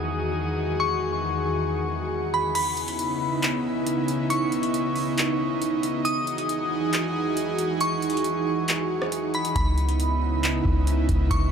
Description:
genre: hip hop, atmospheric cloud-rap.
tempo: 137 BPM.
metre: 4/4.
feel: half-time.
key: C# minor.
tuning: A4 = 440 Hz.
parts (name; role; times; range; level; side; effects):
glassy synth bell; melody; 0.0-11.5 s; B5 to D#6; -29 LUFS; left 1 dB; chorus, phaser, low-pass filter, digital delay.
airy breathy pad; sustained chords; 0.0-11.5 s; E2 to G#4; -25 LUFS; right 1 dB; chorus, sidechain pumping, low-pass filter.
booming analog drum machine; drums; 2.6-11.5 s; crash cymbal, handclaps, hi-hat, kick drum, rim click; -28 LUFS; equal; overdrive.
soft 808-style bass; bass; 9.6-11.5 s; C#2; -23 LUFS; equal; none.
room: light reverb.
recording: none.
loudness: -22 LUFS.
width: side -7 dB against mid.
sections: 0.0-2.5 A section; 2.5-11.5 B section.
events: kick muted 2.5-9.6.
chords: 0.0 Emaj9; 2.5 C#m9; 6.1 Emaj9; 9.6 C#m9.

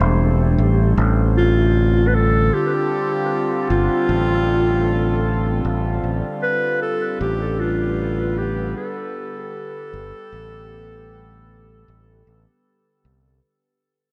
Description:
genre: ambient dub.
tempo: 77 BPM.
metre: 4/4.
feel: straight.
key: unclear.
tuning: A4 = 440 Hz.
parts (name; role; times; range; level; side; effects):
warbly tape-like pad; sustained chords; 0.0-13.4 s; D3 to B4; -27 LUFS; equal; chorus, built-in reverb, phaser, vintage 12-bit sampler grit.
overdriven fingered electric bass; bass; 0.0-13.4 s; E1 to C2; -21 LUFS; equal; tube saturation.
mellow clarinet; melody; 1.4-12.6 s; F4 to B4; -25 LUFS; equal; dub echo.
room: moderate lush hall reverb, RT60 1.7 s, studio ambience.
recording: none.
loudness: -19 LUFS.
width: mono.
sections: 0.0-13.4 A section.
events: fade-out 1.0-13.4.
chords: 0.0 Am7; 1.0 Dm7.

